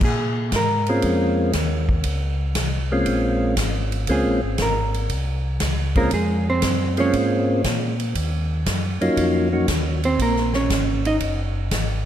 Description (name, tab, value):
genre	soul jazz organ trio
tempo	118 BPM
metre	4/4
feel	swing 69% on 8ths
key	Bb minor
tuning	A4 = 439 Hz
part	hollow-body jazz guitar	accompaniment	0.0-1.0, 4.1-11.2 s	Ab3 to Eb5	-24 LUFS	right 2 dB	none
part	mellow tonewheel organ	bass	0.0-12.1 s	Gb1 to Bb2	-24 LUFS	equal	chorus vibrato, slow rotary speaker
part	swinging big-band drum kit	drums	0.0-11.9 s	crash cymbal, hi-hat, kick drum, ride cymbal, snare drum	-26 LUFS	equal	none
part	percussive tonewheel organ	melody	0.9-9.7 s	Gb3 to Gb4	-23 LUFS	equal	slow rotary speaker, analog delay
room	moderate lush hall reverb, RT60 2.3 s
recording	dreamy mix soaked in reverb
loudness	-19 LUFS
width	side -10 dB against mid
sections	0.0-12.1 A section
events	hollow-body jazz guitar solo 0.0-12.1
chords	0.0 Bbm7; 8.2 Ebm7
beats	| 0.03 0.54 1.04 1.55 | 2.06 2.57 3.08 3.59 | 4.09 4.60 5.11 5.62 | 6.13 6.64 7.15 7.65 | 8.16 8.67 9.18 9.69 | 10.20 10.71 11.21 11.72